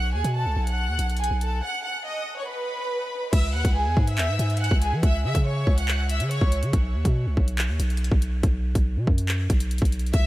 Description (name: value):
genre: hip hop, drill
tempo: 141 BPM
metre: 4/4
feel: half-time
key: C# minor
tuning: A4 = 440 Hz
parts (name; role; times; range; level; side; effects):
- rich studio violin section; melody; 0.0-6.5, 10.1-10.3 s; G#4 to F#6; -28 LUFS; equal; diffuse ambient delay
- long sustained 808-style bass; bass; 0.0-10.3 s; B1 to E3; -24 LUFS; equal; none
- drill drum kit; drums; 0.2-10.2 s; crash cymbal, handclaps, hi-hat, kick drum; -24 LUFS; equal; none
room: light reverb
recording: none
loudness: -21 LUFS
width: side -16 dB against mid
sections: 0.0-3.3 A section; 3.3-10.3 B section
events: break 1.6-3.3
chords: 0.0 B7(no3); 3.3 C#m; 6.7 N.C.